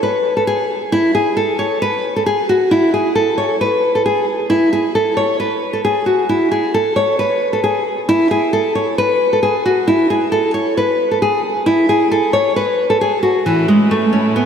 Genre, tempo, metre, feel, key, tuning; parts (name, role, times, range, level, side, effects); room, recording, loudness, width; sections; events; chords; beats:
hip hop; 134 BPM; 4/4; half-time; A major; A4 = 439 Hz
nylon-string guitar; melody; 0.0-14.5 s; E3 to C#5; -13 LUFS; equal; tape echo
warm chamber string section; sustained chords; 13.5-14.5 s; A2 to E4; -18 LUFS; right 2 dB
wet lush hall reverb, RT60 2.6 s; dreamy mix soaked in reverb; -13 LUFS; side -7 dB against mid
0.0-13.5 A section
0.0 N.C.; 13.5 A
0.03 0.47 | 0.92 1.37 1.82 2.26 | 2.71 3.16 3.61 4.05 | 4.50 4.95 5.40 5.85 | 6.29 6.74 7.19 7.64 | 8.09 8.53 8.98 9.43 | 9.88 10.32 10.77 11.22 | 11.67 12.12 12.56 13.01 | 13.46 13.91 14.35